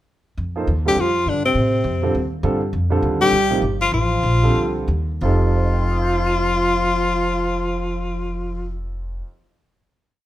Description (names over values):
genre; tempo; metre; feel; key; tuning
jazz; 174-205 BPM; 4/4; swing 60% on 8ths; F mixolydian; A4 = 440 Hz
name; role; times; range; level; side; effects
upright bass; bass; 0.4-9.2 s; F1 to A2; -22 LUFS; equal; none
warm grand piano; accompaniment; 0.6-9.8 s; F2 to Eb7; -24 LUFS; right 3 dB; none
warm tenor saxophone; melody; 0.9-8.7 s; C4 to G4; -20 LUFS; left 3 dB; none
breathy tenor saxophone; second line; 0.9-8.7 s; C3 to G3; -26 LUFS; right 4 dB; none
room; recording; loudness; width
light reverb; none; -17 LUFS; side -14 dB against mid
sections
0.4-5.2 A section; 5.2-8.0 final chord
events
slowing down 2.7-5.2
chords
0.4 F9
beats
| 0.38 0.68 0.97 1.26 | 1.56 1.85 2.15 2.44 | 2.73 3.03 3.32 3.62 | 3.93 4.24 4.56 4.88 | 5.22 5.57 5.91 6.25 | 6.60 6.94 7.29 7.63